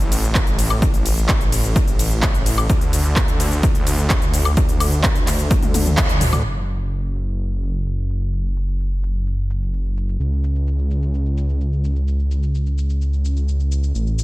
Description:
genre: EDM, festival progressive house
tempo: 128 BPM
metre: 4/4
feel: straight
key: F# minor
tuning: A4 = 439 Hz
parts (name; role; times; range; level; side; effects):
- detuned saw bass; bass; 0.0-14.2 s; F#1 to D2; -19 LUFS; equal; tube saturation, sidechain pumping
- big-room dance drum kit; drums; 0.0-14.2 s; crash cymbal, handclaps, hi-hat, ride cymbal, shaker, toms, woodblock; -23 LUFS; left 1 dB; overdrive, low-pass filter on hats, studio reverb, low-pass filter on perc, low-pass filter on cymbals, low-pass filter on snare, low-pass filter on toms
- electronic kick drum; drums; 0.4-6.1 s; none; -18 LUFS; equal; overdrive, studio reverb
room: digital ambience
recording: dense, heavily limited modern master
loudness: -17 LUFS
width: side -18 dB against mid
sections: 0.0-6.4 A section; 6.4-14.2 B section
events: drop 0.0-6.4; drum fill 5.5-6.4; band accent 6.0; filter sweep on drum 6.4-14.2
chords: none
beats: 0.35 | 0.82 1.29 1.76 2.23 | 2.70 3.16 3.63 4.10 | 4.57 5.04 5.51 5.98 | 6.45 6.91 7.38 7.85 | 8.32 8.79 9.26 9.73 | 10.20 10.66 11.13 11.60 | 12.07 12.54 13.01 13.48 | 13.95

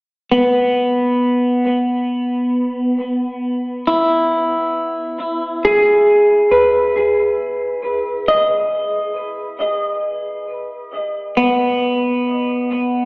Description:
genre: ambient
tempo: 68 BPM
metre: 4/4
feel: straight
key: B major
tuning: A4 = 440 Hz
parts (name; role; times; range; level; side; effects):
- clean electric guitar; solo; 0.3-13.1 s; B3 to D#5; -14 LUFS; equal; lush chorus, diffuse ambient delay
room: wet concert hall reverb, RT60 2.2 s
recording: small speaker sound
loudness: -14 LUFS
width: side -32 dB against mid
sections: 0.0-13.1 A section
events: none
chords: 0.0 Bsus4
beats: | 0.77 1.66 2.56 3.45 | 4.33 5.21 6.09 6.97 | 7.85 8.73 9.61 10.49 | 11.38 12.28

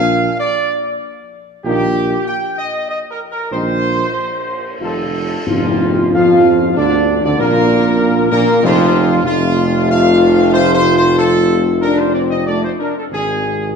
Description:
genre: classical, ceremonial fanfare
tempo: 95 BPM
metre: 3/4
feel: straight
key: Bb major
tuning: A4 = 440 Hz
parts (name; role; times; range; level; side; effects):
- dark trumpet section; melody; 0.0-13.7 s; F4 to G5; -18 LUFS; equal; none
- mellow tuba; bass; 0.0-13.8 s; F1 to F2; -16 LUFS; right 2 dB; none
- mellow French horn section; sustained chords; 1.6-13.8 s; F3 to F4; -17 LUFS; left 3 dB; none
- cymbal swell and tam-tam; percussion; 1.6-8.0 s; none; -24 LUFS; left 3 dB; none
- dark trombone section; sustained chords; 1.7-13.8 s; F2 to F3; -22 LUFS; right 2 dB; none
room: wet scoring stage reverb, RT60 2.1 s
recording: dark, warm production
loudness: -12 LUFS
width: side -6 dB against mid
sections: 0.0-5.5 A section; 5.5-13.8 B section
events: band accent 5.5-6.1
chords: 0.0 Bb; 1.6 Eb/Bb; 3.5 Ab/Bb; 4.8 F7; 5.5 Bb/F; 9.3 F; 13.1 Ab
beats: 0.40 1.02 | 1.65 2.27 2.89 | 3.52 4.16 4.81 | 5.48 6.14 6.77 | 7.39 8.01 8.63 | 9.25 9.90 10.53 | 11.17 11.82 12.47 | 13.12

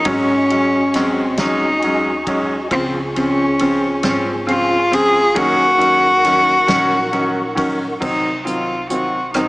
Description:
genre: six-eight pop ballad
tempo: 45 BPM (dotted quarters)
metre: 6/8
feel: straight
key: unclear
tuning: A4 = 439 Hz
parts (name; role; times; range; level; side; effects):
- warm cello; melody; 0.0-9.5 s; C4 to Ab4; -16 LUFS; equal; tape echo
- mellow tonewheel organ; sustained chords; 0.0-8.0 s; Eb4 to Db6; -25 LUFS; equal; chorus vibrato, fast rotary speaker
- upright bass; bass; 0.0-9.5 s; Ab1 to Eb2; -33 LUFS; equal; none
- bright concert grand piano; accompaniment; 0.1-9.5 s; Db3 to Db4; -20 LUFS; equal; none
- natural country drum kit; drums; 0.1-9.5 s; crash cymbal, hi-hat, kick drum, ride cymbal, rim click, snare drum; -28 LUFS; equal; none
room: moderate lush hall reverb, RT60 2.6 s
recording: big arena sound, small speaker sound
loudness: -14 LUFS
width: side -23 dB against mid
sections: 0.0-8.0 A section; 8.0-9.5 B section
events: none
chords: 0.1 Ab7sus4; 2.7 Dbmaj7; 5.4 Ebm7; 8.0 Cdim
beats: | 0.07 1.39 | 2.71 4.04 | 5.37 6.69 | 8.02 9.35

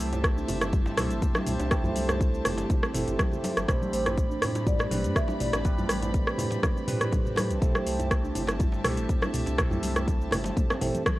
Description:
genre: afro house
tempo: 122 BPM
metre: 4/4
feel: swing 53% on 16ths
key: unclear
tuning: A4 = 441 Hz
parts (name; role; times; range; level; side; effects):
- warm chamber string section; sustained chords; 0.0-11.2 s; C4 to B5; -39 LUFS; left 2 dB; sidechain pumping
- buzzing kalimba; arpeggios; 0.0-11.2 s; E3 to A4; -35 LUFS; equal; sidechain pumping, tape echo
- overdriven tine electric piano; stabs; 0.0-11.0 s; C4 to C5; -34 LUFS; right 3 dB; phaser, sidechain pumping, tape echo
- warm sub bass; bass; 0.0-10.9 s; G1 to A2; -33 LUFS; equal; sidechain pumping
- afro-pop drum kit; drums; 0.0-11.2 s; hi-hat, rim click, shaker, toms; -29 LUFS; equal; none
- congas; percussion; 0.1-11.2 s; none; -36 LUFS; left 1 dB; none
- djembe; percussion; 0.1-11.0 s; none; -37 LUFS; right 1 dB; none
- electronic kick drum; drums; 0.2-11.2 s; none; -26 LUFS; equal; none
- marimba with soft mallets; melody; 3.9-5.9 s; C5 to E5; -35 LUFS; equal; tape echo
room: studio reverb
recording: dry, gritty hardware recording, cassette tape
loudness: -24 LUFS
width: side -17 dB against mid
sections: 0.0-11.2 A section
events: drum fill 10.6-11.2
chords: 0.0 C6; 3.7 Am11; 7.6 C6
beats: 0.24 0.73 1.22 | 1.71 2.21 2.70 3.19 | 3.68 4.17 4.66 5.16 | 5.65 6.14 6.63 7.12 | 7.62 8.11 8.60 9.09 | 9.58 10.07 10.57 11.06

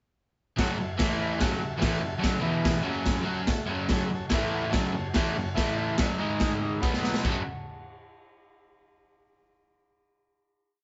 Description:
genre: garage rock duo or trio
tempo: 144 BPM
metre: 4/4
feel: straight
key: F# minor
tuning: A4 = 440 Hz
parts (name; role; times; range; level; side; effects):
- combo organ; sustained chords; 0.6-7.4 s; D#4 to F#5; -38 LUFS; equal; spring reverb
- crunchy overdriven guitar; riff; 0.6-7.4 s; E2 to F#4; -31 LUFS; equal; none
- raw garage drum kit; drums; 0.6-7.3 s; crash cymbal, kick drum, snare drum; -31 LUFS; equal; none
room: moderate studio reverb, RT60 0.8 s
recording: band playing live in one room, nothing above 7.8 kHz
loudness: -28 LUFS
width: mono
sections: 0.6-7.2 riff; 7.2-8.9 final chord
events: drum fill 6.8-7.2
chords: 0.6 F#m; 1.0 A5; 1.4 F#m; 2.4 E5; 2.9 F#m; 4.3 A5; 4.7 F#m; 5.6 A5; 6.0 F#m; 6.2 G#5; 6.8 B5; 7.2 F#m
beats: | 0.58 0.99 1.40 1.82 | 2.23 2.65 3.06 3.48 | 3.90 4.32 4.74 5.15 | 5.57 5.99 6.41 6.83 | 7.25

